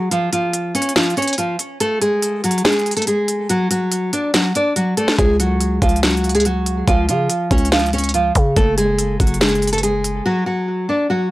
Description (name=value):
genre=hip hop, trap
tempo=142 BPM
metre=4/4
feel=half-time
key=F# harmonic minor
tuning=A4 = 437 Hz
part: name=nylon-string guitar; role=melody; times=0.0-11.3 s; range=E#3 to D5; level=-17 LUFS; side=equal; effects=tape echo
part: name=trap drum kit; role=drums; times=0.1-10.1 s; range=hi-hat, kick drum, snare drum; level=-18 LUFS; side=equal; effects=none
part: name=growling 808-style bass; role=bass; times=5.2-10.2 s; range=F#1 to C#3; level=-20 LUFS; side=equal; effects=none
room=little or no reverb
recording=dry, gritty hardware recording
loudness=-15 LUFS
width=side -17 dB against mid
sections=0.0-11.3 A section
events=break 0.0-5.2, 10.3-11.3; kick muted 3.5-5.2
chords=0.0 C#; 1.8 F#madd9; 3.5 D; 5.2 C#; 8.6 F#madd9; 10.3 D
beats=| 0.12 0.54 0.96 1.38 | 1.80 2.23 2.65 3.07 | 3.50 3.92 4.34 4.76 | 5.18 5.61 6.03 6.45 | 6.88 7.30 7.72 8.14 | 8.56 8.99 9.41 9.83 | 10.26 10.68 11.10